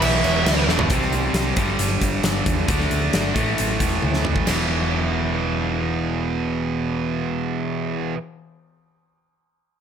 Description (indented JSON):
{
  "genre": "hard rock",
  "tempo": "134 BPM",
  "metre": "4/4",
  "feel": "straight",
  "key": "E minor",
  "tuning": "A4 = 437 Hz",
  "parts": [
    { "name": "dark smooth lead guitar", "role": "melody", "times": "0.0-0.6 s", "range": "E5", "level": "-24 LUFS", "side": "right 2 dB", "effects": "overdrive, tape echo" },
    { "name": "distorted electric guitar", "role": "riff", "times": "0.0-0.9 s", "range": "E3 to E4", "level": "-26 LUFS", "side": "equal", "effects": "overdrive" },
    { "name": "overdriven semi-hollow guitar", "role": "riff", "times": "0.0-8.2 s", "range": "E2 to D4", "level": "-26 LUFS", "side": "left 10 dB", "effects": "spring reverb" },
    { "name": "tight distorted guitar", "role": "riff", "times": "0.0-8.2 s", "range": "E2 to D4", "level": "-24 LUFS", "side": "right 10 dB", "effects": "distortion" },
    { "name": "hollow-body short-scale fingered electric bass", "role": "bass", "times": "0.0-8.1 s", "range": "E1 to E2", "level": "-26 LUFS", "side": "equal", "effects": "none" },
    { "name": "huge arena drum kit", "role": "drums", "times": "0.0-4.6 s", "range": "crash cymbal, hi-hat, kick drum, snare drum, toms", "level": "-23 LUFS", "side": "equal", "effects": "none" }
  ],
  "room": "light reverb, small room ambience",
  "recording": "none",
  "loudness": "-19 LUFS",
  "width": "side -8 dB against mid",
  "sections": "0.9-4.5 A section; 4.5-8.1 B section",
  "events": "drum fill 0.7, 4.0-4.5",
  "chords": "0.0 Em; 0.9 C5; 1.6 G5; 2.7 D5; 3.4 A5; 4.5 E5"
}